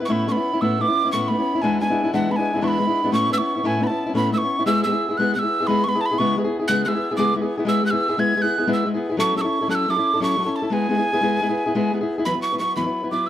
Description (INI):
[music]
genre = celtic folk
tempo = 118 BPM (dotted quarters)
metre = 9/8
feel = straight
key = E mixolydian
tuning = A4 = 441 Hz
[part]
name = fingerpicked steel-string acoustic guitar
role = accompaniment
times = 0.0-13.3 s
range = E2 to B4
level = -21 LUFS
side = left 2 dB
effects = none
[part]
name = breathy mellow wooden whistle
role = melody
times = 0.1-13.3 s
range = F#5 to G#6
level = -22 LUFS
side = right 2 dB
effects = plate reverb
[sound]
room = light reverb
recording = dark, warm production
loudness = -18 LUFS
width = side -11 dB against mid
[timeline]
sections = 0.1-12.3 A section; 12.3-13.3 B section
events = none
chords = 0.1 Aadd9; 1.6 E7; 3.1 Aadd9; 4.7 E/G#; 6.2 C#m7; 7.7 E/G#; 9.2 F#m7; 10.7 E/G#; 12.3 Esus2